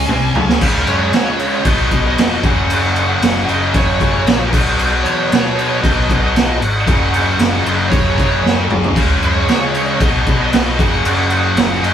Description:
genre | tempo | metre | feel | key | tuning
hard rock | 115 BPM | 4/4 | straight | F# major | A4 = 440 Hz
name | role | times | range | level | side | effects
high-gain lead guitar | melody | 0.0-11.9 s | A#4 to G#5 | -22 LUFS | right 3 dB | distortion
distorted electric guitar | riff | 0.0-11.9 s | F#2 to C#4 | -26 LUFS | right 4 dB | distortion
high-gain distorted guitar | riff | 0.0-11.9 s | F#2 to D#4 | -23 LUFS | right 1 dB | distortion
tight distorted guitar | riff | 0.0-11.9 s | F#2 to C#4 | -21 LUFS | left 6 dB | distortion
overdriven picked electric bass | bass | 0.0-11.9 s | E#1 to C#3 | -21 LUFS | equal | none
raw garage drum kit | drums | 0.1-11.9 s | crash cymbal, kick drum, snare drum, toms | -15 LUFS | equal | none
room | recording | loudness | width
light reverb | band playing live in one room | -12 LUFS | side -9 dB against mid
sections
0.6-11.9 A section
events
drum fill 0.1-0.6, 8.4-9.0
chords
0.1 G#add11/B#; 0.6 C#; 1.7 B; 2.4 F#; 4.5 B; 6.9 F#; 9.0 C#; 10.0 B; 10.8 F#

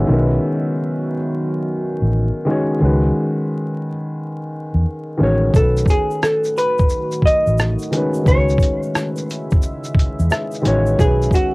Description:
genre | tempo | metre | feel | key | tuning
lo-fi hip hop | 88 BPM | 4/4 | swing 64% on 16ths | C# minor | A4 = 440 Hz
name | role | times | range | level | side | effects
dark upright piano | accompaniment | 0.0-11.5 s | D#3 to E5 | -21 LUFS | left 1 dB | cassette tape, low-pass filter
deep dark ambient pad | sustained chords | 0.0-11.5 s | C#3 to E5 | -28 LUFS | equal | chorus, built-in reverb, low-pass filter, cassette tape
vintage muted fingered electric bass | bass | 0.0-11.3 s | A1 to E2 | -17 LUFS | equal | none
dusty soul sampler-style drum kit | drums | 5.5-11.5 s | hi-hat, kick drum, rim click, shaker | -17 LUFS | equal | none
tube shaker | percussion | 5.5-11.5 s | none | -44 LUFS | right 3 dB | none
vintage hollow-body jazz guitar | melody | 5.6-11.5 s | F#4 to D#5 | -19 LUFS | equal | low-pass filter, cassette tape
room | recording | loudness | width
light reverb | home recording on cassette, vinyl crackle | -15 LUFS | side -24 dB against mid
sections
0.0-11.5 A section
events
upright piano fill 10.0-11.0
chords
0.1 B; 2.8 C#7(no3); 5.5 B7; 8.3 C#m7; 11.0 B

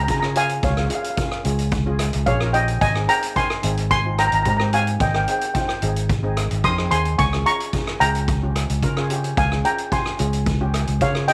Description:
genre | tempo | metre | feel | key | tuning
calypso | 110 BPM | 4/4 | straight | unclear | A4 = 440 Hz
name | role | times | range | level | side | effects
steel pan | melody | 0.0-11.3 s | Db5 to Eb6 | -23 LUFS | equal | none
fingered electric bass | bass | 0.0-11.3 s | Ab1 to Db3 | -24 LUFS | equal | none
steel pan | accompaniment | 0.1-11.3 s | C4 to Bb4 | -32 LUFS | equal | none
street-band drum kit | drums | 0.1-11.3 s | hi-hat, kick drum, rim click | -28 LUFS | equal | none
room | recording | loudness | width
light reverb | none | -21 LUFS | mono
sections
0.0-11.3 A section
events
none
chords
0.0 Db; 2.8 Ab; 7.2 Db

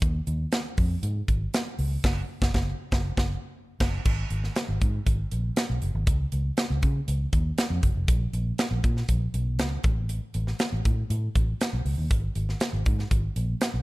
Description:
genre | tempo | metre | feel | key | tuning
polished 1980s jazz-funk pop | 119 BPM | 4/4 | straight | unclear | A4 = 440 Hz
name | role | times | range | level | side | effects
vintage muted fingered electric bass | bass | 0.0-13.8 s | E#1 to C#3 | -27 LUFS | equal | none
crisp fusion drum kit | drums | 0.0-13.7 s | crash cymbal, hi-hat, kick drum, snare drum | -26 LUFS | equal | none
room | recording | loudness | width
little or no reverb | lossy compression artefacts | -24 LUFS | side -20 dB against mid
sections
0.0-4.1 A section; 4.1-13.8 B section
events
band accent 2.0-4.1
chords
none

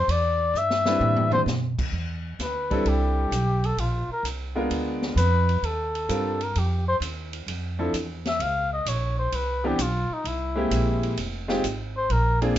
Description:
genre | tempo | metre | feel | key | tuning
jazz, small-group swing and bop | 130 BPM | 4/4 | swing 68% on 8ths | C major | A4 = 441 Hz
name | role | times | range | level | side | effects
trumpet with cup mute | melody | 0.0-12.6 s | D4 to F5 | -26 LUFS | left 2 dB | none
upright bass | bass | 0.0-12.6 s | F1 to B2 | -26 LUFS | right 1 dB | none
open jazz drum kit | drums | 0.1-12.6 s | crash cymbal, hi-hat, kick drum, ride cymbal, snare drum, toms | -33 LUFS | right 1 dB | none
bright upright piano | accompaniment | 0.9-12.6 s | E3 to B4 | -26 LUFS | equal | none
room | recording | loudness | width
moderate club reverb, RT60 0.5 s | dark, warm production, nothing above 7.7 kHz | -22 LUFS | side -12 dB against mid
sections
0.0-1.9 A section; 1.9-12.6 B section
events
muted trumpet solo 0.0-1.9; drum fill 0.6-1.5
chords
0.0 Cmaj7; 1.9 C69; 3.8 Bb7b9; 5.6 Ebmaj13; 7.5 Dm9; 8.4 Bbm; 9.3 Cmaj7; 10.2 C7b13; 11.2 Fm7

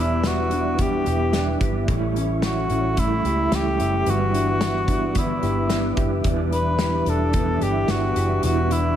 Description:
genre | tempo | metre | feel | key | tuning
dream pop | 110 BPM | 4/4 | straight | E dorian | A4 = 440 Hz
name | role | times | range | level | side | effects
dark cor anglais | melody | 0.0-9.0 s | E4 to B4 | -25 LUFS | equal | tape echo
mellow electric guitar | accompaniment | 0.0-9.0 s | E2 to E4 | -28 LUFS | right 7 dB | tremolo, lush chorus
mellow tonewheel organ | sustained chords | 0.0-9.0 s | E4 to D6 | -30 LUFS | equal | fast rotary speaker
mellow electric guitar | arpeggios | 0.0-9.0 s | E3 to G4 | -27 LUFS | left 3 dB | ensemble chorus, tape echo
vintage muted fingered electric bass | bass | 0.0-9.0 s | E1 to C#2 | -25 LUFS | equal | none
loose indie drum kit | drums | 0.2-8.8 s | hi-hat, kick drum, snare drum | -26 LUFS | equal | none
room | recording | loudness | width
light reverb, small room ambience | none | -19 LUFS | side -10 dB against mid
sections
0.0-9.0 A section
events
none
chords
0.0 Em7; 1.9 A7; 4.1 G6; 6.2 Em7

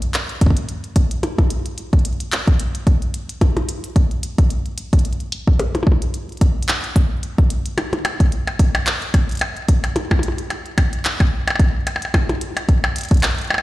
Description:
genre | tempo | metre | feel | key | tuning
IDM | 110 BPM | 4/4 | swing 56% on 16ths | none | none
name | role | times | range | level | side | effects
glitchy drum kit | drums | 0.0-13.6 s | handclaps, hi-hat, percussion blips | -22 LUFS | left 1 dB | small room ambience, ping-pong delay
electronic kick drum | drums | 0.4-13.2 s | none | -15 LUFS | equal | small room ambience
room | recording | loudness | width
digital ambience | played on a big sound system in a bare room, large studio reverb | -16 LUFS | side -17 dB against mid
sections
0.0-13.6 A section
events
none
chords
none

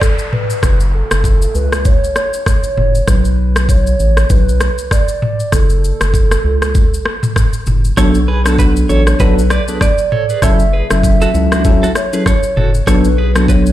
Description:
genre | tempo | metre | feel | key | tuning
afrobeats | 98 BPM | 4/4 | swing 58% on 16ths | F# minor | A4 = 440 Hz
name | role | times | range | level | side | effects
hollow clarinet-like synth lead | melody | 0.0-13.7 s | A4 to E5 | -19 LUFS | right 1 dB | chorus, ping-pong delay
afro-pop drum kit | drums | 0.0-13.7 s | kick drum, rim click, shaker, toms | -14 LUFS | equal | none
downlifter | sound effects | 0.0-3.1 s | none | -29 LUFS | equal | none
round analog bass | bass | 0.6-13.7 s | F#1 to C#2 | -13 LUFS | equal | none
tine electric piano | accompaniment | 8.0-13.7 s | F#3 to A4 | -16 LUFS | left 2 dB | phaser
direct-recorded clean electric guitar | riff | 8.0-13.6 s | D4 to D5 | -22 LUFS | right 6 dB | tremolo, ping-pong delay
room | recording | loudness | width
little or no reverb | played on a big sound system in a bare room, large studio reverb | -11 LUFS | side -14 dB against mid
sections
0.0-13.7 A section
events
none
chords
0.0 B7(no3); 0.6 F#m; 3.1 Bm; 5.5 F#m; 8.0 Bm7; 10.4 F#m7; 12.9 Bm7

